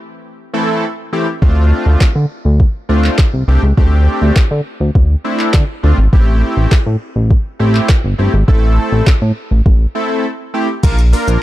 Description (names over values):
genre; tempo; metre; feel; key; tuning
dance-pop; 102 BPM; 4/4; straight; D minor; A4 = 440 Hz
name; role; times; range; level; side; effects
big bright polysynth; accompaniment; 0.5-11.4 s; E3 to Bb4; -18 LUFS; equal; chorus, sidechain pumping
chorused synth bass; bass; 1.4-11.4 s; G1 to D3; -11 LUFS; equal; sidechain pumping
smooth R&B drum kit; drums; 1.4-11.4 s; crash cymbal, handclaps, hi-hat, kick drum, shaker, snare drum; -11 LUFS; equal; none
room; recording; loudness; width
digital ambience; dark, warm production; -11 LUFS; side -15 dB against mid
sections
0.0-10.8 A section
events
break 10.2-10.8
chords
0.0 C6/E; 1.4 Dm7; 6.1 Am7; 10.8 Bb